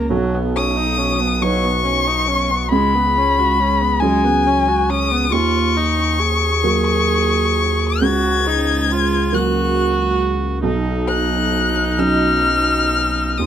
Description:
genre	neoclassical piano and strings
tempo	46 BPM (dotted quarters)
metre	6/8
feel	rubato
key	unclear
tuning	A4 = 440 Hz
part	dark violin	melody	0.0-13.5 s	Ab5 to Ab6	-18 LUFS	left 5 dB	none
part	felt-muted upright piano	accompaniment	0.0-13.5 s	B1 to B4	-20 LUFS	right 3 dB	none
part	warm viola	accompaniment	0.0-13.5 s	F#3 to Ab4	-22 LUFS	right 3 dB	none
part	pure sine sub bass	bass	0.0-13.5 s	B1 to Eb2	-23 LUFS	left 1 dB	none
room	light reverb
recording	none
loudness	-15 LUFS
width	side -9 dB against mid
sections	0.0-13.5 A section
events	none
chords	0.1 Badd9; 2.7 Db7sus4; 5.3 Ebm7; 8.0 Gb/Db; 10.6 Badd9

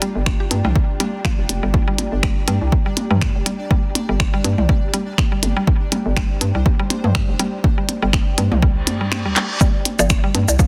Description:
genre	minimal techno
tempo	122 BPM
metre	4/4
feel	swing 56% on 16ths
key	G minor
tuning	A4 = 440 Hz
part	mallet-like synth pluck	riff	0.0-10.7 s	F3 to G4	-28 LUFS	equal	chorus, sidechain pumping, dub echo
part	minimal click drum kit	drums	0.0-10.7 s	finger snaps, handclaps, hi-hat, shaker	-25 LUFS	equal	soft clipping on snare
part	electronic percussion blips and toms	percussion	0.0-10.7 s	none	-27 LUFS	equal	dub echo
part	ethereal airy pad	texture	0.0-10.7 s	G4 to Bb5	-35 LUFS	equal	ensemble chorus, built-in reverb, sidechain pumping
part	pulsing gated texture	texture	0.0-9.6 s	D4 to D5	-38 LUFS	equal	chorus, built-in reverb, sidechain pumping
part	hollow knocking FM bass	bass	0.2-10.6 s	F1 to G2	-23 LUFS	equal	tube saturation, sidechain pumping
part	electronic kick drum	drums	0.3-10.7 s	none	-20 LUFS	equal	overdrive
part	reverse cymbal	sound effects	8.8-9.6 s	none	-30 LUFS	equal	none
room	little or no reverb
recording	dense, heavily limited modern master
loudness	-18 LUFS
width	mono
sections	0.0-9.6 A section; 9.6-10.7 B section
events	reverse cymbal 8.8-9.6; kick drops out 9.1-9.6; drum fill 9.4; drop 9.6-10.7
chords	0.0 Gm7; 9.6 G7(no3)

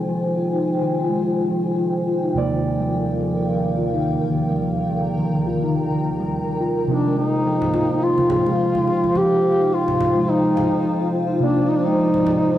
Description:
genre	organic downtempo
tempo	106 BPM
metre	4/4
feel	swing 56% on 16ths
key	F dorian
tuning	A4 = 438 Hz
part	muted felt-like synth keys	accompaniment	0.0-12.6 s	Eb2 to D5	-26 LUFS	right 4 dB	chorus, cassette tape, tape echo
part	granular cloud pad	sustained chords	0.0-12.6 s	Eb3 to Bb5	-24 LUFS	left 1 dB	built-in reverb, cassette tape
part	steel tongue drum	arpeggios	0.1-12.6 s	C3 to F4	-23 LUFS	left 1 dB	low-pass filter, cassette tape, tape echo
part	shaker	drums	0.1-12.6 s	none	barely audible	none	none
part	dark duduk	melody	6.9-12.6 s	D4 to G4	-19 LUFS	left 1 dB	cassette tape, tape echo
part	congas and bongos	percussion	7.6-12.4 s	none	-30 LUFS	right 5 dB	none
room	wet studio ambience, RT60 0.5 s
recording	home recording on cassette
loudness	-18 LUFS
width	side -12 dB against mid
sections	0.0-12.6 A section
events	filter sweep on ambient pad 0.0-12.6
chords	0.0 Fm7; 2.4 Ebmaj7; 6.9 F7(no3); 11.4 Bb

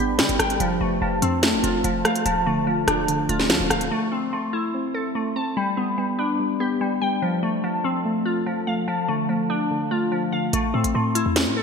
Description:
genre	hip hop, drill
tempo	145 BPM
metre	4/4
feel	half-time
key	A minor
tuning	A4 = 444 Hz
part	glassy wavetable pluck	accompaniment	0.0-11.6 s	F3 to A5	-25 LUFS	left 2 dB	chorus, low-pass filter
part	deep dark ambient pad	sustained chords	0.0-10.5 s	F3 to A5	-32 LUFS	equal	chorus, built-in reverb
part	muted felt-like synth keys	arpeggios	0.0-11.6 s	D3 to C6	-25 LUFS	equal	chorus, low-pass filter, digital delay
part	short 808-style bass	bass	0.0-3.9, 10.5-11.6 s	D1 to D3	-28 LUFS	right 1 dB	none
part	drill drum kit	drums	0.2-3.9, 10.5-11.5 s	hi-hat, rim click, snare drum	-22 LUFS	equal	gated reverb
room	moderate lush hall reverb, RT60 2.3 s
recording	bright 1980s-style digital production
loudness	-20 LUFS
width	side -5 dB against mid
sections	0.0-3.9 A section; 3.9-10.5 B section; 10.5-11.6 C section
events	none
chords	0.0 G; 0.6 F; 2.3 Dm; 3.9 Am; 5.6 G; 7.2 F; 8.9 Dm; 10.5 Am

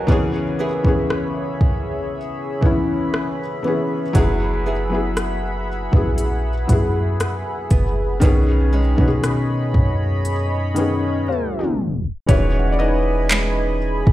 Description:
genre	contemporary R&B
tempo	59 BPM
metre	4/4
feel	straight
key	unclear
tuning	A4 = 440 Hz
part	felt-muted upright piano	accompaniment	0.0-14.1 s	D#3 to F#5	-22 LUFS	left 2 dB	none
part	chorused pulse-width pad	sustained chords	0.0-14.1 s	G#4 to B5	-28 LUFS	equal	none
part	nylon-string guitar	arpeggios	0.0-14.1 s	B2 to G#4	-28 LUFS	right 3 dB	ping-pong delay
part	smooth R&B drum kit	drums	0.1-14.1 s	handclaps, hi-hat, kick drum, rim click	-16 LUFS	equal	overdrive
part	clean 808-style bass	bass	4.2-14.1 s	E1 to B2	-20 LUFS	equal	none
part	handpan	texture	12.3-14.1 s	B4 to F#5	-33 LUFS	right 8 dB	none
room	little or no reverb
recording	played on a big sound system in a bare room, large studio reverb, tape stop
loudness	-17 LUFS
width	side -15 dB against mid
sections	0.0-12.3 A section; 12.3-14.1 B section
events	break 11.3-12.3; tape stop 11.3-12.3; felt piano solo 12.3-14.1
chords	0.1 C#m7; 4.2 F#9sus4; 8.2 B69; 12.3 Emaj7

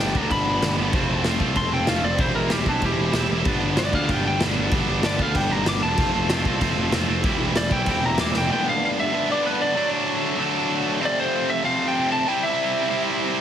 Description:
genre	punk rock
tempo	191 BPM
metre	4/4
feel	straight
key	G mixolydian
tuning	A4 = 440 Hz
part	lightly driven lead guitar	melody	0.0-13.0 s	D4 to D6	-25 LUFS	equal	digital delay
part	tight distorted guitar	riff	0.0-13.4 s	F2 to F4	-23 LUFS	right 1 dB	distortion
part	fuzz picked electric bass	bass	0.0-8.5 s	E1 to D2	-26 LUFS	equal	overdrive
part	raw garage drum kit	drums	0.1-8.4 s	crash cymbal, kick drum, snare drum	-25 LUFS	equal	none
room	little or no reverb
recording	heavily compressed radio sound, multiband compression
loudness	-19 LUFS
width	side -9 dB against mid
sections	0.0-8.5 A section; 8.5-13.4 B section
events	lead electric guitar solo 0.0-8.5; drum fill 8.3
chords	0.0 G; 0.9 F; 2.2 C/E; 3.5 G; 6.0 F; 7.2 C/E; 8.5 G; 9.8 D; 11.0 F; 12.3 C

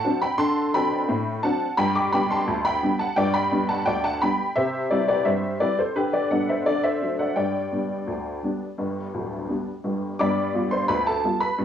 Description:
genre	ragtime piano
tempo	86 BPM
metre	2/4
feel	straight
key	G major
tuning	A4 = 440 Hz
part	honky-tonk upright piano	solo	0.0-11.6 s	D1 to D6	-21 LUFS	equal	cassette tape
room	moderate spring reverb, RT60 1.1 s, small room ambience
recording	home recording on cassette, small room reverb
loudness	-21 LUFS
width	side -9 dB against mid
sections	0.0-10.2 A section; 10.2-11.6 B section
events	none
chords	0.0 D7; 1.8 G; 4.6 C; 6.0 G/D; 6.7 D; 7.4 G; 10.2 G7

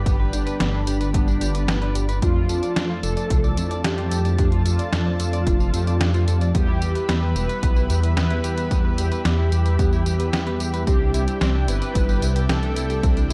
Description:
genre	synthwave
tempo	111 BPM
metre	4/4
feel	straight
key	D dorian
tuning	A4 = 439 Hz
part	mellow synth brass	melody	0.0-13.3 s	D4 to B4	-31 LUFS	equal	chorus, cassette tape, digital delay
part	lush unison pad	sustained chords	0.0-13.3 s	F3 to B5	-36 LUFS	equal	chorus, sidechain pumping
part	analog synth brass	stabs	0.0-13.3 s	F3 to G4	-34 LUFS	equal	chorus
part	dark detuned saw bass	bass	0.0-13.3 s	E1 to F2	-24 LUFS	equal	none
part	clean electric guitar	arpeggios	0.1-13.3 s	B3 to D5	-36 LUFS	equal	digital delay
part	detuned 8-bit digital drum machine	drums	0.1-13.3 s	hi-hat, snare drum, tambourine	-30 LUFS	equal	overdrive
part	electronic kick drum	drums	0.1-13.1 s	none	-24 LUFS	equal	overdrive
room	little or no reverb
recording	dark, warm production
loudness	-21 LUFS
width	mono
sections	0.0-13.3 A section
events	none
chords	0.0 G; 2.2 Dm/F; 6.5 Em; 10.9 Cadd9

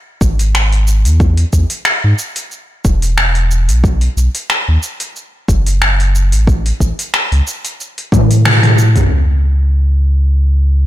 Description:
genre	sunset chillout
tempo	91 BPM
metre	4/4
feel	swing 55% on 16ths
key	unclear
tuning	A4 = 440 Hz
part	warm sub bass	bass	0.2-10.9 s	E1 to A2	-11 LUFS	equal	none
part	deep house drum kit	drums	0.2-9.1 s	cabasa, finger snaps, hi-hat, toms	-16 LUFS	equal	overdrive, soft clipping on snare
part	electronic kick drum	drums	0.2-8.3 s	none	-14 LUFS	equal	overdrive
room	little or no reverb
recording	blown-out, overdriven recording, overdrive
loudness	-10 LUFS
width	side -14 dB against mid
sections	0.0-9.1 A section; 9.1-10.9 B section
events	drum fill 8.1-9.1; band accent 8.5-8.8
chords	none

